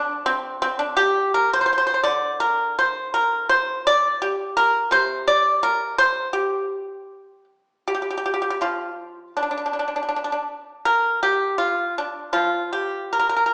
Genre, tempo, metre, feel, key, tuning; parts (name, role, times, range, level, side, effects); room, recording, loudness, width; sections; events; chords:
chinese traditional, Chinese solo plucked strings; 76-85 BPM; 2/4; rubato; A4 = 440 Hz
pipa; solo; 0.0-13.5 s; C3 to D5; -19 LUFS; equal
wet recital hall reverb, RT60 1.5 s; recorded in a church or concert hall, small speaker sound; -19 LUFS; side -32 dB against mid
0.0-7.9 A section; 7.9-13.5 B section